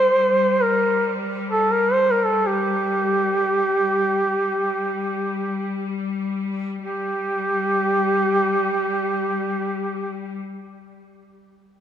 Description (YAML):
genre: caucasian folk, Caucasian lament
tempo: free time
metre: none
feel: none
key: G minor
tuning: A4 = 440 Hz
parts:
  - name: warm duduk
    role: melody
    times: 0.0-10.4 s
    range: G4 to C5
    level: -20 LUFS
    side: right 1 dB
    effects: none
  - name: bright symphonic cello section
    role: drone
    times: 0.0-10.4 s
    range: G3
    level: -28 LUFS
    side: left 4 dB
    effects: none
room: wet church reverb, RT60 3.5 s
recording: dark, warm production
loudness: -19 LUFS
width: side -9 dB against mid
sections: 0.0-6.8 A section; 6.8-11.8 B section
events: slowing down 0.0-6.8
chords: none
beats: free time